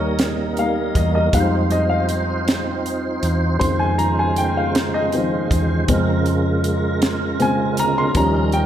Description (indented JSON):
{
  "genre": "slow gospel",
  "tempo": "53 BPM (dotted quarters)",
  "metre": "6/8",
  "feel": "straight",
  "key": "unclear",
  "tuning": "A4 = 441 Hz",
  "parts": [
    { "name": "warm upright piano", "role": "accompaniment", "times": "0.0-8.7 s", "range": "Db3 to C6", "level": "-21 LUFS", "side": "left 2 dB", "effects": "none" },
    { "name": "tonewheel organ", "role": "sustained chords", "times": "0.0-8.7 s", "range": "Db3 to C5", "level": "-23 LUFS", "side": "right 3 dB", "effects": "slow rotary speaker, overdrive, chorus vibrato" },
    { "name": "hollow-body short-scale fingered electric bass", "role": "bass", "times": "0.0-8.7 s", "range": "D2 to F2", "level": "-23 LUFS", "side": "equal", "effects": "none" },
    { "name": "crisp fusion drum kit", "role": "drums", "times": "0.2-8.7 s", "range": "hi-hat, kick drum, snare drum", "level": "-23 LUFS", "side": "right 1 dB", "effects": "none" }
  ],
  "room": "moderate concert hall reverb, RT60 2.1 s",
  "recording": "none",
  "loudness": "-17 LUFS",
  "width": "side -10 dB against mid",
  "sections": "0.0-8.7 A section",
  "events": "upright piano solo 0.0-8.7",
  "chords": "0.0 Eb; 1.3 Fm7; 3.6 Dbmaj7/F; 5.9 Bbm7/F; 8.2 Eb7"
}